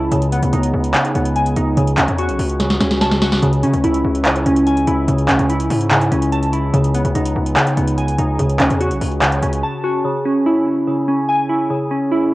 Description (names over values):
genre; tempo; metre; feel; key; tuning
hip hop, trap; 145 BPM; 4/4; half-time; C# minor; A4 = 440 Hz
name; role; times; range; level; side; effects
glassy digital keys; arpeggios; 0.0-12.3 s; C#3 to A5; -16 LUFS; equal; chorus, low-pass filter, cassette tape, analog delay
distorted 808-style bass; bass; 0.0-9.6 s; B1 to C#3; -20 LUFS; equal; distortion
booming analog drum machine; drums; 0.1-9.6 s; handclaps, hi-hat, snare drum; -19 LUFS; equal; overdrive, vintage 12-bit sampler grit
room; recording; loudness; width
moderate spring reverb, RT60 1.6 s; home recording on cassette; -14 LUFS; side -18 dB against mid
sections
0.0-10.0 A section; 10.0-12.3 A section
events
drum fill 2.6-3.4; break 9.6-10.0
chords
0.1 G#m/C#; 1.8 F#m; 3.4 C#m; 5.1 A/C#; 6.7 G#m/C#; 8.4 F#m; 10.0 C#m; 11.7 A/C# (rootless)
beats
| 0.12 0.53 0.94 1.36 | 1.77 2.18 2.60 3.01 | 3.43 3.84 4.25 4.67 | 5.08 5.49 5.91 6.32 | 6.74 7.15 7.56 7.98 | 8.39 8.80 9.22 9.63 | 10.05 10.46 10.87 11.29 | 11.70 12.12